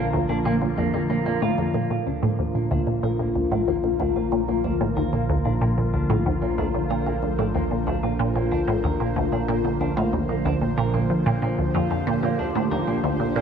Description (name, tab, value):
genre	ambient, sequencer-driven space music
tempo	93 BPM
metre	4/4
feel	straight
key	Bb major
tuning	A4 = 438 Hz
part	phased analog pad	sustained chords	0.0-13.4 s	D3 to Bb5	-25 LUFS	left 1 dB	phaser, chorus
part	semi-hollow electric guitar	arpeggios	0.0-13.4 s	Bb3 to Bb4	-33 LUFS	right 4 dB	auto-pan, analog delay
part	resonant blip pluck	riff	0.0-13.4 s	D2 to F3	-24 LUFS	equal	phaser, lush chorus, analog delay
part	round analog bass	bass	0.0-13.4 s	Bb1	-33 LUFS	equal	none
part	bubbling stepped-filter texture	texture	1.7-13.4 s	C5	-39 LUFS	right 2 dB	chorus, built-in reverb
room	moderate plate reverb, RT60 2.9 s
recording	none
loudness	-21 LUFS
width	side -7 dB against mid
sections	0.0-1.7 A section; 1.7-13.4 B section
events	fade-in on clean electric guitar 1.7-13.4; fade-in on synth texture 1.7-13.4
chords	0.0 Bb